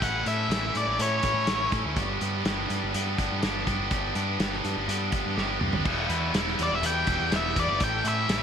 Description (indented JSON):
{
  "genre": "indie rock",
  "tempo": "123 BPM",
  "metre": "4/4",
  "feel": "straight",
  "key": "E dorian",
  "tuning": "A4 = 437 Hz",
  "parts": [
    { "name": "octave-fuzz lead guitar", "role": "melody", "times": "0.0-1.7, 6.6-8.4 s", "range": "C#5 to G5", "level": "-28 LUFS", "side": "left 2 dB", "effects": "distortion" },
    { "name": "biting overdriven guitar", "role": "riff", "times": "0.0-8.4 s", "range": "E2 to G4", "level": "-28 LUFS", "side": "equal", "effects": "none" },
    { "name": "growling picked electric bass", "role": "bass", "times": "0.0-8.4 s", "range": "E1 to A2", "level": "-32 LUFS", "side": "equal", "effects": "overdrive" },
    { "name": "loose indie drum kit", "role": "drums", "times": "0.0-8.4 s", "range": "crash cymbal, hi-hat, kick drum, snare drum, toms", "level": "-30 LUFS", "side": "equal", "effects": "gated reverb" }
  ],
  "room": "light reverb, studio reverb",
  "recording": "bright 1980s-style digital production",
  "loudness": "-24 LUFS",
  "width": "side -7 dB against mid",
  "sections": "0.0-5.9 A section; 5.9-8.4 B section",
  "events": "drum fill 5.4-5.9; lead electric guitar solo 5.9-8.4",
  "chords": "0.0 A; 2.0 G; 5.9 Em; 7.8 A",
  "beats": "| 0.01 0.50 0.99 1.47 | 1.96 2.45 2.93 3.42 | 3.91 4.39 4.88 5.37 | 5.86 6.34 6.83 7.32 | 7.81 8.29"
}